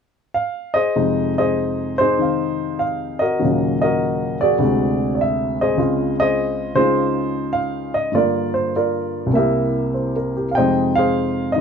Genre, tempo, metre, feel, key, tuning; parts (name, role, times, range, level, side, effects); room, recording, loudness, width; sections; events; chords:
solo jazz; 100 BPM; 4/4; swing 68% on 8ths, rubato; F minor; A4 = 441 Hz
warm upright piano; solo; 0.3-11.6 s; C2 to G5; -17 LUFS; equal
light reverb; dark, warm production; -17 LUFS; side -6 dB against mid
1.0-10.6 A section; 10.6-11.6 B section
0.0 Ab6; 1.0 Fm7; 3.4 Ebm7; 4.6 D7#11; 5.8 Dbmaj7; 8.1 Gm7; 9.3 C7; 10.6 Fm7